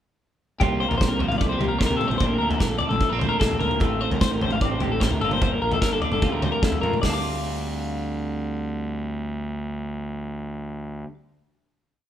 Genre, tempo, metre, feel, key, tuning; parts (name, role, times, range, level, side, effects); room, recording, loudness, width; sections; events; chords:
math rock and midwest emo; 150 BPM; 4/4; straight; D minor; A4 = 440 Hz
twelve-string electric guitar; accompaniment; 0.6-11.3 s; D2 to F4; -30 LUFS; right 4 dB
twelve-string electric guitar; arpeggios; 0.6-11.1 s; G4 to D6; -26 LUFS; left 4 dB; slapback echo
fuzz fingered electric bass; bass; 0.6-11.0 s; G1 to C3; -29 LUFS; equal; overdrive
loose indie drum kit; drums; 0.6-7.1 s; hi-hat, kick drum, snare drum, toms; -24 LUFS; equal
light reverb; band playing live in one room; -21 LUFS; side -10 dB against mid
0.6-7.0 A section; 7.0-10.2 final chord
0.6 C7sus4; 2.2 Bbmaj9; 3.8 Dm7/A; 5.2 Gm7; 6.2 Dm7